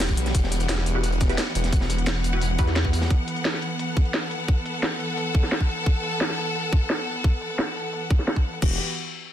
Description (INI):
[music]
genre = dark technical drum and bass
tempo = 174 BPM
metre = 4/4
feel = straight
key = E minor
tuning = A4 = 440 Hz
[part]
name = warm symphonic string section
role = sustained chords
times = 0.0-8.8 s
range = E3 to F#5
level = -28 LUFS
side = left 1 dB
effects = sidechain pumping
[part]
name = filtered dub chord stab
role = stabs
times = 0.0-3.3 s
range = E4 to B4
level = -33 LUFS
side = equal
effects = phaser, ping-pong delay
[part]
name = snarling distorted saw bass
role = bass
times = 0.0-3.1, 8.6-8.8 s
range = E1 to E2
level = -24 LUFS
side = equal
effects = tube saturation, sidechain pumping
[part]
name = crunchy breakbeat drum kit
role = drums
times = 0.0-3.1 s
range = hi-hat, snare drum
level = -34 LUFS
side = equal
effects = high-pass filter on hats, high-pass filter on snare, high-pass filter on room
[part]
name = drum and bass drum kit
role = drums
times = 0.0-8.7 s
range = crash cymbal, hi-hat, snare drum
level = -28 LUFS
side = equal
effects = low-pass filter on hats, low-pass filter on snare, low-pass filter on cymbals
[part]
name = electronic kick drum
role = drums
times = 0.1-8.7 s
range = none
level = -21 LUFS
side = equal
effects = none
[sound]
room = light reverb, studio reverb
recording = dense, heavily limited modern master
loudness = -22 LUFS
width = side -11 dB against mid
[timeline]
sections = 0.0-8.6 A section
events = filter sweep on drum 0.0-8.6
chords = 0.0 Emadd9